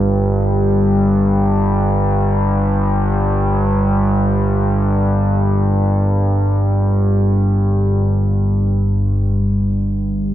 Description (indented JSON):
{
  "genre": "ambient",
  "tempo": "free time",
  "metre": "none",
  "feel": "none",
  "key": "unclear",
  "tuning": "A4 = 443 Hz",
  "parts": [
    { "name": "analog drone", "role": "solo", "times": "0.0-10.3 s", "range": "G1 to G2", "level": "-14 LUFS", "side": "equal", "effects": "chorus" }
  ],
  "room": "wet cathedral reverb, RT60 6.6 s",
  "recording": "dark, warm production",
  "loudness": "-14 LUFS",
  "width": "side -12 dB against mid",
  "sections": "0.0-8.1 A section; 8.1-10.3 B section",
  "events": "none",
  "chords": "none",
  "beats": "free time"
}